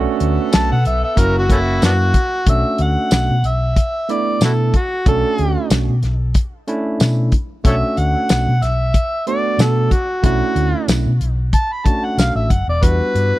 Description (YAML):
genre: straight-eighth soul blues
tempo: 93 BPM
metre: 4/4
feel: swing 56% on 16ths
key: B minor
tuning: A4 = 440 Hz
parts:
  - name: barky tine electric piano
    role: accompaniment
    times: 0.0-13.4 s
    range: G3 to F#4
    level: -22 LUFS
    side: moving between equal and right 11 dB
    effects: auto-pan
  - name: clear horn section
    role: sustained chords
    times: 0.0-2.5, 12.8-13.4 s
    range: A#3 to A4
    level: -29 LUFS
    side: left 4 dB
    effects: none
  - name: hollow-body short-scale fingered electric bass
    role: bass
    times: 0.0-13.3 s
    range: E1 to B2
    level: -17 LUFS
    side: equal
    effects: none
  - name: warm soul drum kit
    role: drums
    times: 0.2-13.3 s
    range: hi-hat, kick drum, snare drum, tambourine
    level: -16 LUFS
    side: left 1 dB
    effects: none
  - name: overdriven harmonica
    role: melody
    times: 0.5-13.4 s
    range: A3 to B5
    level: -20 LUFS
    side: equal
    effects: none
room: small room ambience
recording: dry, close 1970s-style studio recording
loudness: -14 LUFS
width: side -16 dB against mid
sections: 0.0-2.5 A section; 2.5-13.4 B section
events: harmonica solo 0.0-2.5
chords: 0.0 Bm7; 1.2 F#7; 2.5 Bm7; 12.8 Em7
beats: 0.53 1.18 1.82 | 2.47 3.12 3.77 4.41 | 5.06 5.71 6.36 7.00 | 7.65 8.30 8.95 9.60 | 10.24 10.89 11.54 12.19 | 12.83